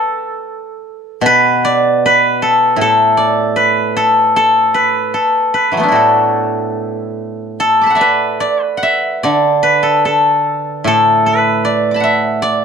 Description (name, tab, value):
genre	chinese traditional, Chinese solo plucked strings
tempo	75 BPM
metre	4/4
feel	uneven beats, rubato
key	D gong mode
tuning	A4 = 439 Hz
part	steel-string zither	solo	0.0-12.6 s	A2 to D6	-11 LUFS	equal	none
room	light reverb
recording	dark, warm production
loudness	-11 LUFS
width	side -6 dB against mid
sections	0.0-12.6 A section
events	none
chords	none